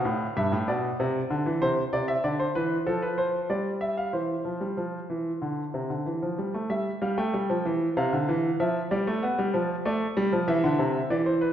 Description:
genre	classical, baroque-style two-part invention for grand piano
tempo	96 BPM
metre	4/4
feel	straight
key	C major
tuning	A4 = 441 Hz
part	warm grand piano	solo	0.0-11.5 s	G2 to G5	-24 LUFS	equal	none
room	wet scoring stage reverb, RT60 1.8 s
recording	heard from further back in the room, nothing above 7.7 kHz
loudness	-25 LUFS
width	side -10 dB against mid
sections	0.0-6.7 A section; 6.7-11.5 B section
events	none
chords	0.4 G (rootless); 1.6 C; 2.9 F; 3.5 G5; 4.1 C/E; 6.7 Emadd11; 8.0 Dm; 9.2 G7; 10.5 C

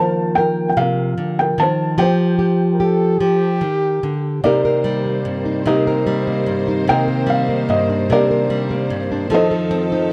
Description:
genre	acoustic folk-pop ballad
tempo	49 BPM (dotted quarters)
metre	6/8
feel	straight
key	unclear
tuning	A4 = 442 Hz
part	felt-muted upright piano	melody	0.0-10.1 s	G4 to A5	-22 LUFS	equal	none
part	nylon-string guitar	accompaniment	0.0-10.1 s	G2 to Bb4	-20 LUFS	equal	none
part	clear French horn	second line	2.7-4.4 s	G4 to Bb4	-23 LUFS	equal	none
part	warm chamber string section	sustained chords	4.4-10.1 s	F2 to C5	-27 LUFS	equal	none
room	light reverb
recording	dry, close 1970s-style studio recording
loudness	-18 LUFS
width	mono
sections	0.0-4.4 A section; 4.4-10.1 B section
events	none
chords	0.0 Ebsus2; 2.0 Fsus2; 4.4 Cm9; 9.3 F7

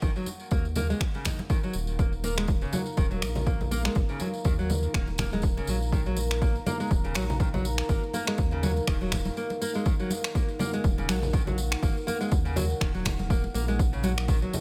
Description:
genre	afro house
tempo	122 BPM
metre	4/4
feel	swing 56% on 16ths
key	Eb minor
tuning	A4 = 441 Hz
part	dark analog pad	sustained chords	0.0-14.6 s	Eb4 to Bb5	-38 LUFS	equal	chorus, phaser, sidechain pumping
part	nylon-string guitar	arpeggios	0.0-14.5 s	Db3 to Eb4	-35 LUFS	equal	sidechain pumping, low-pass filter, dub echo
part	round analog bass	bass	0.0-14.5 s	Eb1 to Eb2	-33 LUFS	equal	sidechain pumping
part	electronic kick drum	drums	0.0-14.4 s	none	-29 LUFS	equal	none
part	congas	percussion	0.0-14.6 s	none	-38 LUFS	equal	none
part	tambourine	percussion	0.0-14.6 s	none	-44 LUFS	equal	none
part	electronic finger snaps	drums	1.0-14.3 s	none	-35 LUFS	equal	none
room	small room ambience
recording	none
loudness	-27 LUFS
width	mono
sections	0.0-14.6 A section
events	none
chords	0.0 Ebm

